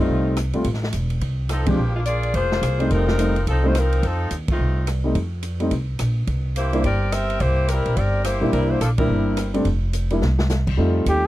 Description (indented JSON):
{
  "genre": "jazz, big band swing",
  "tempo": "213 BPM",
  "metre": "4/4",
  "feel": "swing 61% on 8ths",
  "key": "F mixolydian",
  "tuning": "A4 = 440 Hz",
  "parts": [
    { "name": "bright saxophone section", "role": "melody", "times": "0.0-9.5 s", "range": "F3 to E5", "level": "-24 LUFS", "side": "left 2 dB", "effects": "none" },
    { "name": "warm grand piano", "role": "accompaniment", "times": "0.0-11.2 s", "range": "F3 to F4", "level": "-22 LUFS", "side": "equal", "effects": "none" },
    { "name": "upright bass", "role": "bass", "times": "0.0-11.3 s", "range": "E1 to F2", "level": "-21 LUFS", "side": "equal", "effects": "none" },
    { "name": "swinging big-band drum kit", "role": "drums", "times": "0.4-11.1 s", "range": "crash cymbal, hi-hat, kick drum, ride cymbal, rim click, snare drum", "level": "-28 LUFS", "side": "equal", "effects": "none" },
    { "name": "mellow trumpet", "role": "melody", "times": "11.1-11.3 s", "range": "G4", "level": "-19 LUFS", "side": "equal", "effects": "none" }
  ],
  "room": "little or no reverb",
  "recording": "dry, close 1970s-style studio recording",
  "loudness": "-19 LUFS",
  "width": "side -15 dB against mid",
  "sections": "0.0-10.8 A section",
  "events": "band accent 1.6, 4.5, 9.0; drum fill 10.2",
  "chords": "0.0 F7; 1.8 Bb7; 6.3 C7; 9.7 Bb6/F; 10.2 N.C."
}